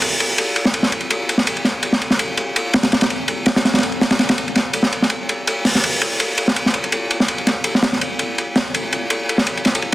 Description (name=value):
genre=drum and bass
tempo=165 BPM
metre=4/4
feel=straight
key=none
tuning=none
part: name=crunchy breakbeat drum kit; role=drums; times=0.0-9.9 s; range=hi-hat, ride cymbal, snare drum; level=-16 LUFS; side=equal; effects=none
room=moderate plate reverb, RT60 1.7 s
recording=dense, heavily limited modern master, vinyl crackle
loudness=-16 LUFS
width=side -16 dB against mid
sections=0.0-9.9 A section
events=none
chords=none